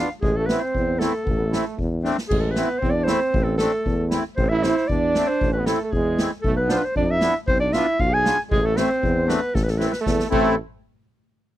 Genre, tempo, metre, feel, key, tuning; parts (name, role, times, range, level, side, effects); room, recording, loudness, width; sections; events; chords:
klezmer; 116 BPM; 2/4; straight; A harmonic minor; A4 = 441 Hz
warm clarinet; melody; 0.0-10.6 s; G#4 to G#5; -24 LUFS; equal
brilliant trombone; second line; 0.0-10.6 s; G#3 to G#4; -27 LUFS; right 6 dB
accordion; accompaniment; 0.0-10.6 s; A3 to F4; -23 LUFS; left 1 dB
warm tuba; bass; 0.2-10.6 s; A1 to F2; -24 LUFS; left 1 dB
street-band drum kit; drums; 0.2-10.4 s; crash cymbal, kick drum, snare drum; -27 LUFS; equal
little or no reverb; dry, close 1970s-style studio recording; -19 LUFS; side -13 dB against mid
0.0-2.3 A section; 2.3-10.6 A section
drum fill 2.0, 9.5-10.6
0.2 Am; 6.4 Bdim; 8.5 Am; 10.6 N.C.